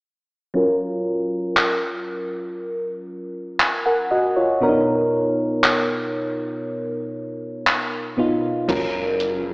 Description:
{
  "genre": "contemporary R&B",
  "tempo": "59 BPM",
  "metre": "4/4",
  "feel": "straight",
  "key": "F# major",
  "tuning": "A4 = 440 Hz",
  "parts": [
    { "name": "mellow FM electric piano", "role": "accompaniment", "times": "0.5-9.5 s", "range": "B2 to G#5", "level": "-21 LUFS", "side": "equal", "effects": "chorus, low-pass filter" },
    { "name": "dusty soul sampler-style drum kit", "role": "drums", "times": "1.6-9.4 s", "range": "crash cymbal, handclaps, hi-hat, kick drum", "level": "-21 LUFS", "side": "equal", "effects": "vintage 12-bit sampler grit" },
    { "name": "granular cloud pad", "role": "sustained chords", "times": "9.1-9.5 s", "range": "F#3 to A#4", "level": "-32 LUFS", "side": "equal", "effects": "built-in reverb" },
    { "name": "rubbery square bass", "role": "bass", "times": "8.7-9.5 s", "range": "F#1", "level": "-37 LUFS", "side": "equal", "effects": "none" }
  ],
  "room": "moderate lush hall reverb, RT60 2.8 s",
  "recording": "played on a big sound system in a bare room, large studio reverb, AM radio sound",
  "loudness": "-19 LUFS",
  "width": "side -30 dB against mid",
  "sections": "0.6-8.7 A section",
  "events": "filter sweep on FM electric piano 0.6-8.7; kick muted 4.6-8.7",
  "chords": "0.6 F#maj7; 4.6 Bmaj7; 8.7 F#maj7"
}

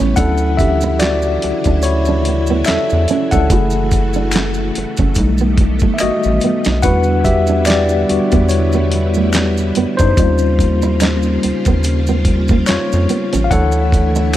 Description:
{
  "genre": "R&B, neo-soul",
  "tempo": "72 BPM",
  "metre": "4/4",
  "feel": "swing 56% on 16ths",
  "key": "unclear",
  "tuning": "A4 = 440 Hz",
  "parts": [
    { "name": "nylon-string guitar", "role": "second line", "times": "0.0-14.3 s", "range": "A3 to F#4", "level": "-22 LUFS", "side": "right 7 dB", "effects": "none" },
    { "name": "tine electric piano", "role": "accompaniment", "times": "0.0-14.4 s", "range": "E3 to F#5", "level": "-17 LUFS", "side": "left 2 dB", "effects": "fast stereo tremolo" },
    { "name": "string machine, full ensemble", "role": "sustained chords", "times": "0.0-14.4 s", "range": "C#3 to G4", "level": "-22 LUFS", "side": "equal", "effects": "ensemble chorus" },
    { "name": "rubbery square bass", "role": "bass", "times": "0.0-14.4 s", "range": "F#1 to F#2", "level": "-17 LUFS", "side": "equal", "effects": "none" },
    { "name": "dusty soul sampler-style drum kit", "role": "drums", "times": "0.2-14.4 s", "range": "handclaps, hi-hat, kick drum, snare drum", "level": "-17 LUFS", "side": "equal", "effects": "none" },
    { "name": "maracas and finger snaps", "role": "percussion", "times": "0.2-14.4 s", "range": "none", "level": "-28 LUFS", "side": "equal", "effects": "none" }
  ],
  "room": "light reverb",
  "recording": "dark, warm production",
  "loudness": "-12 LUFS",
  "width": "side -13 dB against mid",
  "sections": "0.0-14.4 A section",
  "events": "tine electric piano solo 0.0-14.4; drum fill 6.0-6.8",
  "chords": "0.2 Dmaj9; 3.5 F#m7; 5.2 B7b13; 6.8 Em7; 10.2 D#13; 13.5 Dmaj9"
}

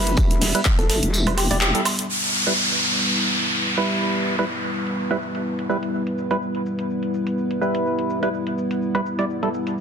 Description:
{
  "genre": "bass house",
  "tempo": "125 BPM",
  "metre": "4/4",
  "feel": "swing 55% on 16ths",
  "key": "E minor",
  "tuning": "A4 = 440 Hz",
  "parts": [
    { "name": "dark analog pad", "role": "sustained chords", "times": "0.0-9.8 s", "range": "G3 to E5", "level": "-26 LUFS", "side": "equal", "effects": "chorus, sidechain pumping" },
    { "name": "percussive organ stab", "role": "stabs", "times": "0.0-9.5 s", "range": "G3 to D5", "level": "-25 LUFS", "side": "right 2 dB", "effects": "chorus, sidechain pumping, dub echo" },
    { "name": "vowel-sweep wobble bass", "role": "bass", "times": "0.0-1.7 s", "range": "E1 to G1", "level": "-22 LUFS", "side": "equal", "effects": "chorus, sidechain pumping" },
    { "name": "big-room dance drum kit", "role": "drums", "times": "0.1-9.8 s", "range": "handclaps, hi-hat, shaker, woodblock", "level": "-25 LUFS", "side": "right 1 dB", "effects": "overdrive, low-pass filter on perc, small room ambience, low-pass filter on hats, low-pass filter on snare" },
    { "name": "electronic kick drum", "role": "drums", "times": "0.2-0.8 s", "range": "none", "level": "-18 LUFS", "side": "equal", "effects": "overdrive, small room ambience" },
    { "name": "vintage drum kit", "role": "drums", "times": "0.2-2.1 s", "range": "hi-hat, snare drum, tambourine", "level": "-30 LUFS", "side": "equal", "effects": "sidechain pumping on hats, high-pass filter on hats, small room ambience, high-pass filter on snare, sidechain pumping on perc, high-pass filter on perc, high-pass filter on room" },
    { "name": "soft struck synth lead", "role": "melody", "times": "0.8-1.8 s", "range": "G4 to A4", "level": "-30 LUFS", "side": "left 1 dB", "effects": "chorus, dub echo" },
    { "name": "downlifter", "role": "sound effects", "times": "2.1-5.9 s", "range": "none", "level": "-22 LUFS", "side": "equal", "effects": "none" }
  ],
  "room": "light reverb, studio reverb",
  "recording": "dense, heavily limited modern master",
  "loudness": "-19 LUFS",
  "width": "side -7 dB against mid",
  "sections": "0.0-2.1 A section; 2.1-9.8 B section",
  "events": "kick drops out 1.1-2.1; band accent 1.6; filter sweep on synth stab 2.1-9.8",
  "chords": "0.0 Em"
}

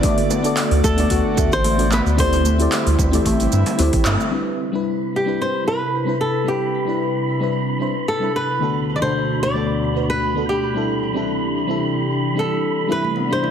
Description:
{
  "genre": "sunset chillout",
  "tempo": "112 BPM",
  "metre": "4/4",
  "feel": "swing 53% on 16ths",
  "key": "C lydian",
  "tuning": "A4 = 441 Hz",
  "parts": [
    { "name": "mellow FM electric piano", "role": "accompaniment", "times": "0.0-13.5 s", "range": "B2 to E5", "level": "-23 LUFS", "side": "left 1 dB", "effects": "chorus, phaser, auto-pan, digital delay" },
    { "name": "airy breathy pad", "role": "sustained chords", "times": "0.0-13.5 s", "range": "D2 to D5", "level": "-24 LUFS", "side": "left 1 dB", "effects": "chorus" },
    { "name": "steel pan", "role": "arpeggios", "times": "0.0-4.3, 12.9-13.5 s", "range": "A3 to F#4", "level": "-26 LUFS", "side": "left 2 dB", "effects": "digital delay" },
    { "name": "deep house drum kit", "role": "drums", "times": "0.0-4.3 s", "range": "handclaps, hi-hat, shaker", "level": "-26 LUFS", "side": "right 1 dB", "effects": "overdrive, low-pass filter on hats, low-pass filter on perc, low-pass filter on snare" },
    { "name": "electronic kick drum", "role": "drums", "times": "0.0-4.0 s", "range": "none", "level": "-23 LUFS", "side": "equal", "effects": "overdrive" },
    { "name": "bongos and congas", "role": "percussion", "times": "0.0-4.2, 13.0-13.5 s", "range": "none", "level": "-29 LUFS", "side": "right 3 dB", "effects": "none" },
    { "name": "round analog bass", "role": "bass", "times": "0.7-4.2 s", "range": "A1 to G2", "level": "-19 LUFS", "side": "equal", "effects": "none" },
    { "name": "flamenco guitar", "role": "melody", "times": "0.8-13.5 s", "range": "G4 to D5", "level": "-22 LUFS", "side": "equal", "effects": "tape echo" },
    { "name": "wind-like tuned noise texture", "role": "texture", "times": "4.8-13.5 s", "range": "B5", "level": "-29 LUFS", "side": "right 3 dB", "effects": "built-in reverb" }
  ],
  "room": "moderate plate reverb, RT60 1.5 s",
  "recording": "heavily compressed radio sound, multiband compression",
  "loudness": "-17 LUFS",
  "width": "side -8 dB against mid",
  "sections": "0.0-4.3 A section; 4.3-13.5 B section",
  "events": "band accent 4.1",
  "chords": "0.0 Bm7/D; 2.2 D9sus4; 4.3 Cmaj9; 8.6 Bm7/D; 10.8 D9sus4; 12.9 Cmaj9"
}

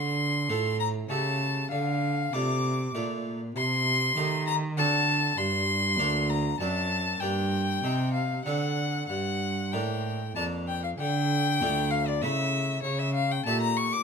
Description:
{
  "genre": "classical, baroque-style sonata movement with continuo",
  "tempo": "98 BPM",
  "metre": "3/4",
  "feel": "straight",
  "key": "D minor, G minor from 3.6 s, D minor from 11.0 s",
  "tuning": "A4 = 437 Hz",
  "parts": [
    { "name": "clear violin", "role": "melody", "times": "0.0-14.0 s", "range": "C#5 to D6", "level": "-28 LUFS", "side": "left 4 dB", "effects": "none" },
    { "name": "harpsichord", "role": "accompaniment", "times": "0.0-14.0 s", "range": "D2 to E5", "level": "-34 LUFS", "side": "right 2 dB", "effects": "none" },
    { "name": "dark cello", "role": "bass", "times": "0.0-14.0 s", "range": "D2 to Eb3", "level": "-29 LUFS", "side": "right 2 dB", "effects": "none" }
  ],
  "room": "light reverb",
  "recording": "minimal, uncompressed stereo recording",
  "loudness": "-25 LUFS",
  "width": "side -5 dB against mid",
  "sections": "0.0-11.0 A section; 11.0-14.0 A section",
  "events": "none",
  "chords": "0.0 Dm; 1.1 A7/C#; 1.7 Dm; 3.6 Am7b5/C; 4.8 D7; 5.4 Gm; 6.6 D7/F#; 7.2 Gm; 7.8 Cm; 8.5 D7; 9.1 Gm; 11.0 Dm; 12.2 A/C#; 12.8 A7"
}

